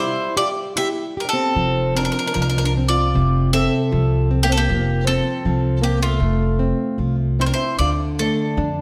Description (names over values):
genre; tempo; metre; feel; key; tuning
fado-style ballad; 77 BPM; 2/4; rubato; F major; A4 = 441 Hz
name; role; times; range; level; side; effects
bowl-back mandolin; melody; 0.0-8.8 s; F4 to E5; -25 LUFS; equal; none
fingerpicked twelve-string acoustic guitar; second line; 0.0-8.8 s; A3 to A4; -28 LUFS; equal; none
nylon-string guitar; accompaniment; 0.0-8.8 s; C3 to G4; -26 LUFS; equal; none
upright bass; bass; 1.6-8.8 s; F1 to F2; -23 LUFS; equal; none
room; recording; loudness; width
wet recital hall reverb, RT60 1.5 s; none; -19 LUFS; mono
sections
0.0-7.8 A section; 7.8-8.8 B section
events
none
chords
0.0 C; 1.6 F; 7.8 Dm